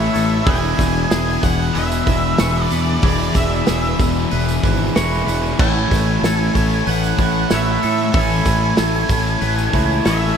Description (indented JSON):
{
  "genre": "rock, shoegaze and dream pop",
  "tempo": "94 BPM",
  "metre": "4/4",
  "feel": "straight",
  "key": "A major",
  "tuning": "A4 = 440 Hz",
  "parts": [
    { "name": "octave-fuzz lead guitar", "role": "melody", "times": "0.0-10.4 s", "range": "D5 to G#5", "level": "-23 LUFS", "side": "right 1 dB", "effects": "distortion, analog delay" },
    { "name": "twangy electric guitar", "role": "arpeggios", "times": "0.0-10.4 s", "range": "G#4 to C#6", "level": "-29 LUFS", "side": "left 2 dB", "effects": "wide subtle chorus, analog delay" },
    { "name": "biting overdriven guitar", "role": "riff", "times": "0.0-10.4 s", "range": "E3 to D5", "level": "-25 LUFS", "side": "left 1 dB", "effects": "none" },
    { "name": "overdriven electric guitar", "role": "riff", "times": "0.0-10.4 s", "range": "E2 to E4", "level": "-23 LUFS", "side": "right 9 dB", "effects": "reverse reverb" },
    { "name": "thick fuzz guitar", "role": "riff", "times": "0.0-10.4 s", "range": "E2 to A3", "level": "-22 LUFS", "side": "left 8 dB", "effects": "distortion, wide subtle chorus" },
    { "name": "growling fingered electric bass", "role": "bass", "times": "0.0-10.3 s", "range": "E1 to A2", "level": "-21 LUFS", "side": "equal", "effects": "overdrive" },
    { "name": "loose indie drum kit", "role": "drums", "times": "0.1-10.2 s", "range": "crash cymbal, hi-hat, kick drum, snare drum", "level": "-21 LUFS", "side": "equal", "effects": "none" },
    { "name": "tambourine", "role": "percussion", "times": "0.2-10.2 s", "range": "none", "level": "-38 LUFS", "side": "right 6 dB", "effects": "none" }
  ],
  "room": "moderate lush hall reverb, RT60 2.3 s",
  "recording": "dreamy mix soaked in reverb",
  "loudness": "-15 LUFS",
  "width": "side -7 dB against mid",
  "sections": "0.0-10.4 A section",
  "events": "none",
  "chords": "0.5 E7; 5.6 Amaj7",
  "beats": "| 0.47 1.11 1.75 2.39 | 3.03 3.67 4.32 4.96 | 5.59 6.23 6.87 7.51 | 8.15 8.79 9.43 10.07"
}